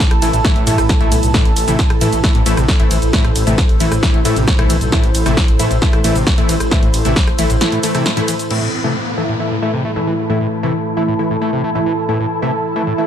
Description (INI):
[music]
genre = driving peak-time techno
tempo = 134 BPM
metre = 4/4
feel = straight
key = A minor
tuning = A4 = 440 Hz
[part]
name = metallic inharmonic drone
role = drone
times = 0.0-13.1 s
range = A2 to E3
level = -24 LUFS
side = left 2 dB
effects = chorus, built-in reverb, sidechain pumping
[part]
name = electronic kick drum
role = drums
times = 0.0-7.3 s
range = none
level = -14 LUFS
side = equal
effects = overdrive
[part]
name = punchy analog drum machine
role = drums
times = 0.0-8.6 s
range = crash cymbal, hi-hat, ride cymbal, rim click, shaker, snare drum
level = -20 LUFS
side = equal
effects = none
[part]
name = airy breathy pad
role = texture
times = 0.0-13.1 s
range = E4 to A5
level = -22 LUFS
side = right 1 dB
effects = chorus, sidechain pumping
[part]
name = dark detuned saw bass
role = bass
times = 0.1-7.6 s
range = A1 to A2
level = -18 LUFS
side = equal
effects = sidechain pumping
[part]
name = screaming distorted acid line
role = riff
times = 0.2-12.9 s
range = G2 to A3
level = -23 LUFS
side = equal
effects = distortion, chorus, sidechain pumping, tape echo
[part]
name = supersaw stab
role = stabs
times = 0.2-13.1 s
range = E3 to E4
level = -21 LUFS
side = left 1 dB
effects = sidechain pumping, low-pass filter, tape echo
[part]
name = downlifter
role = sound effects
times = 8.5-12.1 s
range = none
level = -27 LUFS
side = equal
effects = none
[sound]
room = light reverb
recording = none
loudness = -12 LUFS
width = side -9 dB against mid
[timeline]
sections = 0.0-8.5 A section; 8.5-13.1 B section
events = drop 0.0-8.5; kick drops out 7.6-8.5; band accent 8.1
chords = 0.0 A5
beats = 0.00 0.45 0.89 | 1.34 1.79 2.24 2.68 | 3.13 3.58 4.03 4.47 | 4.92 5.37 5.82 6.27 | 6.71 7.16 7.61 8.06 | 8.51 8.95 9.40 9.85 | 10.30 10.74 11.19 11.64 | 12.09 12.54 12.98